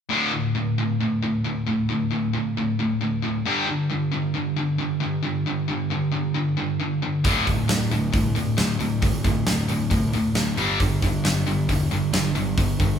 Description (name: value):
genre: hard rock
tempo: 135 BPM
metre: 4/4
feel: straight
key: unclear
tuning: A4 = 441 Hz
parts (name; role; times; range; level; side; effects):
- distorted electric guitar; riff; 0.1-13.0 s; D2 to G3; -25 LUFS; left 5 dB; distortion
- distorted electric guitar; riff; 0.1-13.0 s; D2 to G3; -26 LUFS; right 5 dB; overdrive
- fuzz picked electric bass; bass; 7.2-13.0 s; D1 to C2; -28 LUFS; equal; overdrive
- huge arena drum kit; drums; 7.2-12.9 s; hi-hat, kick drum, snare drum; -24 LUFS; equal; none
room: wet large studio reverb, RT60 1.3 s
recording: band playing live in one room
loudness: -21 LUFS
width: side -8 dB against mid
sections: 0.1-13.0 A section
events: none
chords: 0.1 D5; 3.5 G5; 7.3 D5; 10.6 G5